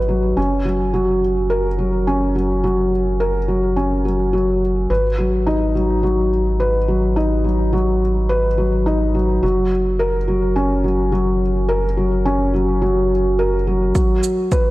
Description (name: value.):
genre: piano and strings electronica.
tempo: 106 BPM.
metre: 4/4.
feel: straight.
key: unclear.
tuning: A4 = 441 Hz.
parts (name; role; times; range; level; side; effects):
felt-muted upright piano; riff; 0.0-14.7 s; F#3 to B4; -17 LUFS; equal; tape echo.
round analog bass; bass; 0.0-13.9 s; F#1 to G#1; -21 LUFS; equal; sidechain pumping.
electronic kick drum; drums; 14.0-14.6 s; none; -17 LUFS; equal; overdrive.
shaker; drums; 14.0-14.6 s; none; -30 LUFS; right 8 dB; overdrive.
room: light reverb, digital ambience.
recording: none.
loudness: -16 LUFS.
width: side -17 dB against mid.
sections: 0.0-14.0 A section.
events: none.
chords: 0.4 F#; 4.9 G#m7; 9.4 F#; 14.0 F#sus4.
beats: | 0.37 0.94 1.50 2.07 | 2.63 3.20 3.77 4.33 | 4.90 5.46 6.03 6.60 | 7.16 7.73 8.29 8.86 | 9.43 9.99 10.56 11.12 | 11.69 12.26 12.82 13.39 | 13.96 14.52.